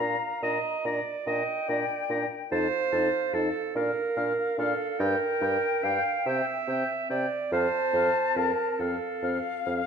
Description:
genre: classical, slow romantic movement for wind quintet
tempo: 48 BPM (dotted quarters)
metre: 6/8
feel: rubato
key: unclear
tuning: A4 = 440 Hz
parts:
  - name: concert flute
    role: melody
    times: 0.0-9.9 s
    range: F5 to Bb5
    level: -32 LUFS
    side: left 10 dB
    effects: none
  - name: warm oboe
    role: second line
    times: 0.0-9.8 s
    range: F5 to Bb5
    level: -34 LUFS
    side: left 5 dB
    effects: none
  - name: clear clarinet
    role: accompaniment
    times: 0.0-9.8 s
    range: A4 to F5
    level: -29 LUFS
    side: right 6 dB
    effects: none
  - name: warm French horn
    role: accompaniment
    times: 0.0-9.8 s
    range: C4 to Eb4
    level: -35 LUFS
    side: left 1 dB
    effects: none
  - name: warm bassoon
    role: bass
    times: 0.0-9.8 s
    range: F2 to C3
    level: -32 LUFS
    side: right 1 dB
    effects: none
room: wet recital hall reverb, RT60 1.5 s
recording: dark, warm production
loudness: -25 LUFS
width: side -6 dB against mid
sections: 0.0-9.9 A section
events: none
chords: 0.0 Bb; 2.5 F7; 3.8 Bb; 5.0 Gm; 6.3 C; 7.5 F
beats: | 0.00 1.27 | 2.52 3.76 | 5.00 6.27 | 7.52 8.80

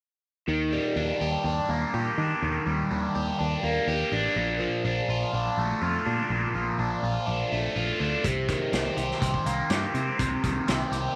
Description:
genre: psychedelic rock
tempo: 124 BPM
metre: 4/4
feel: straight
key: unclear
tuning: A4 = 441 Hz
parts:
  - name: overdriven semi-hollow guitar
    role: riff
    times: 0.5-11.2 s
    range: Bb2 to G4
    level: -29 LUFS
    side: equal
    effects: phaser
  - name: picked electric bass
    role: bass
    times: 0.5-11.1 s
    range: A1 to Eb3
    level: -33 LUFS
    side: equal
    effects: none
  - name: vintage drum kit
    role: drums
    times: 8.2-11.0 s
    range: hi-hat, kick drum, snare drum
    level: -33 LUFS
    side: equal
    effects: none
room: light reverb, small room ambience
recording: none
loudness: -27 LUFS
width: mono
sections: 0.5-11.2 A section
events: none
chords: 0.5 Ebmaj7; 4.4 Bbmaj7; 8.2 Cm7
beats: | 0.48 0.97 1.45 1.94 | 2.42 2.91 3.39 3.88 | 4.36 4.85 5.33 5.82 | 6.30 6.79 7.28 7.76 | 8.25 8.73 9.22 9.71 | 10.19 10.68

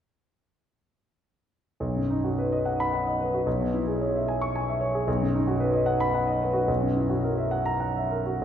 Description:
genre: classical, virtuoso piano study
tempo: 66-76 BPM (dotted quarters)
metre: 6/8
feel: rubato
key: B major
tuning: A4 = 440 Hz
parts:
  - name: warm grand piano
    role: solo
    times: 1.8-8.4 s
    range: B1 to C#6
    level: -23 LUFS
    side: equal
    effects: none
room: wet concert hall reverb, RT60 2.2 s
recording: heard from further back in the room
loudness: -24 LUFS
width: side -9 dB against mid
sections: 1.8-8.4 A section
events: none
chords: 1.8 B; 3.5 C#m7/B; 5.1 B; 6.7 F#7/B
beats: | 1.80 2.64 | 3.46 4.27 | 5.07 5.87 | 6.68 7.52 | 8.40

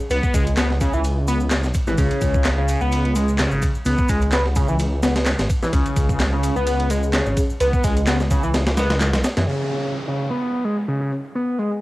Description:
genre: breakbeat, breaks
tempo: 128 BPM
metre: 4/4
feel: swing 54% on 16ths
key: C# minor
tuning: A4 = 440 Hz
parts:
  - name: electronic shaker and handclaps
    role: drums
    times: 0.0-11.8 s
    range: none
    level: -29 LUFS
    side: equal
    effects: low-pass filter on perc, cassette tape, low-pass filter on snare, low-pass filter on room
  - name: overdriven synth lead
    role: riff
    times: 0.1-11.7 s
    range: C#3 to B3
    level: -22 LUFS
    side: equal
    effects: phaser, analog delay
  - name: dark detuned saw bass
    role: bass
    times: 0.1-9.5 s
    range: G#1 to F#2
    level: -22 LUFS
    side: equal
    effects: none
  - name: breakbeat sampler-style drum kit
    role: drums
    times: 0.1-9.5 s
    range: kick drum, ride cymbal, snare drum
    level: -22 LUFS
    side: equal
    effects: cassette tape
  - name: downlifter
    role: sound effects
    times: 9.5-11.8 s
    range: none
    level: -34 LUFS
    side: equal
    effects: none
room: light reverb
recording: home recording on cassette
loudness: -18 LUFS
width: side -18 dB against mid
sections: 0.0-9.5 A section; 9.5-11.8 B section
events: kick drops out 8.5-9.5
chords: 0.0 C#5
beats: | 0.10 0.57 1.04 1.51 | 1.98 2.45 2.92 3.39 | 3.85 4.32 4.79 5.26 | 5.73 6.20 6.67 7.14 | 7.61 8.07 8.54 9.01 | 9.48 9.95 10.42 10.89 | 11.36

